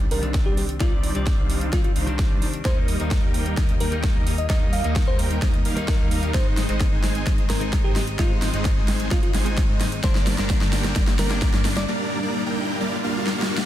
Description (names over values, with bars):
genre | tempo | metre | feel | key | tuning
EDM, festival progressive house | 130 BPM | 4/4 | straight | C minor | A4 = 440 Hz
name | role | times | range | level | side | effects
direct-recorded clean electric guitar | accompaniment | 0.0-11.9 s | D3 to D5 | -32 LUFS | left 3 dB | sidechain pumping
dense compressed supersaw | riff | 0.0-13.7 s | G3 to Ab5 | -27 LUFS | equal | sidechain pumping, low-pass filter, ping-pong delay
fat analog bass | bass | 0.0-11.9 s | G1 to Eb2 | -28 LUFS | equal | sidechain pumping
big-room dance drum kit | drums | 0.0-13.7 s | hi-hat, snare drum | -29 LUFS | left 1 dB | none
bell-like FM electric piano | melody | 0.1-11.8 s | F4 to F5 | -32 LUFS | equal | chorus, ping-pong delay
electronic kick drum | drums | 0.3-11.5 s | none | -22 LUFS | equal | none
riser | sound effects | 10.0-13.7 s | none | -34 LUFS | equal | none
room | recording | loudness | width
light reverb | dense, heavily limited modern master | -19 LUFS | side -12 dB against mid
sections
0.0-13.7 A section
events
build-up 0.0-13.7; drum fill 0.0-11.9, 13.3-13.7; riser 10.0-13.7; break 11.9-13.7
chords
0.0 Cmadd9; 2.7 Eb; 6.3 Ab; 10.0 Gm